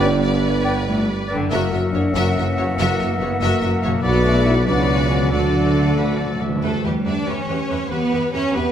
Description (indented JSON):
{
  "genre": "cinematic",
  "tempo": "94 BPM (dotted quarters)",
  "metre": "6/8",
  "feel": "straight",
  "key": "unclear",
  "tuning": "A4 = 435 Hz",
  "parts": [
    { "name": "clear symphonic violin section", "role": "melody", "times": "0.0-8.7 s", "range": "G4 to E5", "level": "-28 LUFS", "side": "left 4 dB", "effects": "none" },
    { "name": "clear chamber violin section", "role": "second line", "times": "0.0-8.7 s", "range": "F#4 to E5", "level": "-33 LUFS", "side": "left 2 dB", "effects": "none" },
    { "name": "clear clarinet", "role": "second line", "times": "0.0-6.4 s", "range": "A4 to B4", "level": "-31 LUFS", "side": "left 3 dB", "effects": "none" },
    { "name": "clear oboe", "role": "second line", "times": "0.0-6.6 s", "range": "A4 to E5", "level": "-28 LUFS", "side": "left 1 dB", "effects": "none" },
    { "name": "flute section", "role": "second line", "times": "0.0-6.4 s", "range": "F#5 to G5", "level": "-30 LUFS", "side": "left 2 dB", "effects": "none" },
    { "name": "clear symphonic viola section", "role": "accompaniment", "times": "0.0-8.6 s", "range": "F#4 to B4", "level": "-29 LUFS", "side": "right 1 dB", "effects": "none" },
    { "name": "mellow French horn section", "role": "sustained chords", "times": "0.0-8.7 s", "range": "F#3 to B4", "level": "-26 LUFS", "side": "left 2 dB", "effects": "none" },
    { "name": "mellow trombone section", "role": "sustained chords", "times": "0.0-6.4 s", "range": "D3 to B3", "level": "-28 LUFS", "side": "right 3 dB", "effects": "none" },
    { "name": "concert harp", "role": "arpeggios", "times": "0.0-8.7 s", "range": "F#2 to D5", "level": "-29 LUFS", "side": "left 6 dB", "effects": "none" },
    { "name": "mellow tuba", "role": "bass", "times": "0.0-6.4 s", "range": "F#1 to D2", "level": "-24 LUFS", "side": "right 2 dB", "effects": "none" },
    { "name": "rich symphonic cello section", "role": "bass", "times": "0.0-8.7 s", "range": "F#2 to D4", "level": "-24 LUFS", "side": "right 2 dB", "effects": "none" },
    { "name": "rich symphonic double bass section", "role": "bass", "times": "0.0-8.6 s", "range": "F#1 to E2", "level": "-25 LUFS", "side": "right 2 dB", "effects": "none" },
    { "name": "timpani", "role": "percussion", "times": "5.3-6.6 s", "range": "D3", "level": "-26 LUFS", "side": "right 2 dB", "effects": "none" }
  ],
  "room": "wet scoring stage reverb, RT60 1.6 s",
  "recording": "none",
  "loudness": "-17 LUFS",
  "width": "side -9 dB against mid",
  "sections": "0.0-6.6 A section; 6.6-8.7 B section",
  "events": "timpani fill 5.3-6.6",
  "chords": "0.0 G; 1.5 F#7; 4.0 Bm; 5.3 D; 6.6 Em"
}